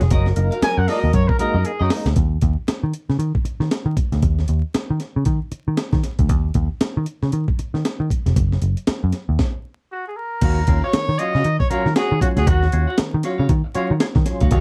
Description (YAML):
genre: funk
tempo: 117 BPM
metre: 4/4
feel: swing 60% on 16ths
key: Eb minor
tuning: A4 = 439 Hz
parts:
  - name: warm trumpet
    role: melody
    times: 0.0-2.1, 9.9-13.0 s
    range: Eb4 to Ab5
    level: -26 LUFS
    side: equal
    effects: none
  - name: clean electric guitar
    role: accompaniment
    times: 0.0-2.1, 10.4-14.6 s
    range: Gb4 to Gb5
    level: -30 LUFS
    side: equal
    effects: none
  - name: percussive tonewheel organ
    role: stabs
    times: 0.0-2.1, 10.4-14.6 s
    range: Eb3 to F4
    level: -30 LUFS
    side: equal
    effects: chorus vibrato, slow rotary speaker
  - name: vintage muted picked electric bass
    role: bass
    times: 0.0-14.6 s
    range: F1 to Eb3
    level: -21 LUFS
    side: equal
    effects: none
  - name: breakbeat sampler-style drum kit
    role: drums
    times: 0.0-14.6 s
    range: crash cymbal, hi-hat, kick drum, snare drum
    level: -23 LUFS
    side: equal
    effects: none
  - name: breathy tenor saxophone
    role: second line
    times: 0.1-1.9 s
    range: Bb4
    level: -30 LUFS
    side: equal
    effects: none
room: light reverb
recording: dark, warm production, vinyl crackle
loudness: -20 LUFS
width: mono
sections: 0.0-2.2 A section; 2.2-10.4 B section; 10.4-14.6 C section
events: trumpet solo 0.0-2.2; drum fill 1.7-2.2; stop 9.4-10.4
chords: 0.1 Gb6; 2.2 N.C.; 10.4 Ebm9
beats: | 0.12 0.63 1.14 1.66 | 2.17 2.68 3.20 3.71 | 4.23 4.75 5.26 5.78 | 6.29 6.81 7.33 7.84 | 8.36 8.88 9.39 9.91 | 10.42 10.93 11.45 11.96 | 12.47 12.98 13.49 14.00 | 14.51